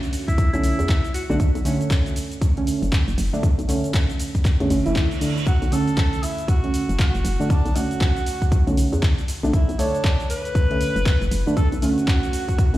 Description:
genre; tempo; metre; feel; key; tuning
deep house; 118 BPM; 4/4; swing 61% on 16ths; B minor; A4 = 441 Hz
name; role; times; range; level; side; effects
deep mellow chord stab; stabs; 0.0-12.8 s; D3 to C#5; -24 LUFS; right 1 dB; chorus, cassette tape, sidechain pumping, digital delay
punchy analog drum machine; drums; 0.0-12.8 s; handclaps, hi-hat, shaker; -31 LUFS; equal; none
clear alto saxophone; melody; 0.3-1.4 s; E4 to F#4; -30 LUFS; left 1 dB; digital delay
electronic kick drum; drums; 0.3-12.7 s; none; -19 LUFS; equal; none
hollow knocking FM bass; bass; 0.5-12.8 s; F#1 to E2; -22 LUFS; equal; tube saturation
reverse cymbal; sound effects; 4.7-5.5 s; none; -36 LUFS; right 5 dB; none
clear tenor saxophone; melody; 5.5-12.8 s; D4 to B4; -28 LUFS; equal; dub echo
room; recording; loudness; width
light reverb; played on a big sound system in a bare room, stone room reverb; -18 LUFS; side -15 dB against mid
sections
0.0-12.8 A section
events
reverse cymbal 4.7-5.5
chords
0.0 Bm9 (rootless)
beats
0.38 0.89 | 1.40 1.91 2.42 2.92 | 3.43 3.94 4.45 4.96 | 5.47 5.97 6.48 6.99 | 7.50 8.01 8.52 9.03 | 9.53 10.04 10.55 11.06 | 11.57 12.08 12.59

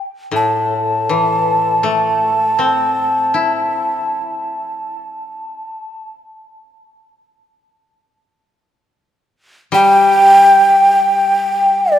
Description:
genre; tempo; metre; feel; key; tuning
japanese traditional, Japanese chamber music; free time; none; none; unclear; A4 = 440 Hz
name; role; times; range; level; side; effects
breathy mellow shakuhachi; melody; 0.0-12.0 s; D5 to A5; -12 LUFS; equal; none
koto; accompaniment; 0.3-12.0 s; A2 to E4; -20 LUFS; left 4 dB; none
room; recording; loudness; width
wet church reverb, RT60 3.5 s; none; -11 LUFS; side -11 dB against mid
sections
0.0-12.0 A section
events
slowing down 9.5-12.0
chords
none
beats
free time

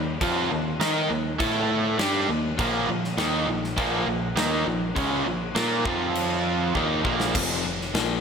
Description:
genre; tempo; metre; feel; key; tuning
hard rock; 101 BPM; 4/4; straight; unclear; A4 = 440 Hz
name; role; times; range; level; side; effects
cranked stack guitar; riff; 0.0-7.3 s; Bb2 to Eb5; -26 LUFS; right 8 dB; overdrive, slapback echo
overdriven semi-hollow guitar; riff; 0.0-8.2 s; F2 to Eb5; -27 LUFS; left 9 dB; none
picked electric bass; bass; 0.0-8.2 s; F1 to Eb3; -32 LUFS; equal; none
huge arena drum kit; drums; 0.2-8.1 s; crash cymbal, kick drum, snare drum; -28 LUFS; left 1 dB; none
room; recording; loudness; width
moderate lush hall reverb, RT60 2.3 s; big arena sound; -22 LUFS; side -6 dB against mid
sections
0.0-7.3 A section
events
drum fill 6.8-7.3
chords
0.0 Eb5; 1.4 A5; 2.0 Eb5; 2.6 Bb5; 5.9 F5; 6.8 Bb5; 7.3 F5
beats
| 0.21 0.80 1.40 1.99 | 2.59 3.18 3.78 4.37 | 4.97 5.56 6.16 6.75 | 7.35 7.95

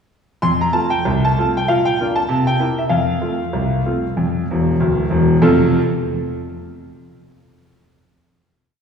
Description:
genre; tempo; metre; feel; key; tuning
ragtime piano; 96 BPM; 2/4; swing 58% on 16ths; F major; A4 = 438 Hz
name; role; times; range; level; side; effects
warm grand piano; solo; 0.4-5.8 s; D1 to C6; -15 LUFS; equal; none
room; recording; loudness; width
wet concert hall reverb, RT60 2.4 s; heard from further back in the room; -15 LUFS; side -6 dB against mid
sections
0.4-5.4 A section; 5.4-6.7 final chord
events
grand piano fill 4.5-5.4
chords
0.4 F; 1.7 Bb; 2.3 C7; 2.9 F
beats
| 0.41 1.04 | 1.66 2.29 | 2.91 3.54 | 4.17 4.80 | 5.43

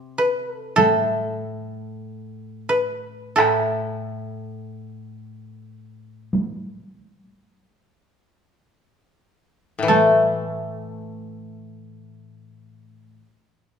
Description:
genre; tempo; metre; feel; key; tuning
japanese traditional, Japanese chamber music; 32-49 BPM; 4/4; rubato; A minor; A4 = 441 Hz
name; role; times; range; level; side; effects
koto; melody; 0.0-13.1 s; A4 to C5; -20 LUFS; right 3 dB; none
koto; accompaniment; 0.0-13.2 s; A2 to A3; -24 LUFS; left 3 dB; none
taiko ensemble; percussion; 0.8-10.8 s; none; -26 LUFS; right 1 dB; none
room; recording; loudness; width
moderate recital hall reverb, RT60 1.4 s; minimal, uncompressed stereo recording; -19 LUFS; side -7 dB against mid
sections
0.0-9.9 A section; 9.9-13.8 B section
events
slowing down 0.0-9.9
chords
none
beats
0.78 2.04 | 3.38 4.80 6.34 8.05 | 9.90 11.79

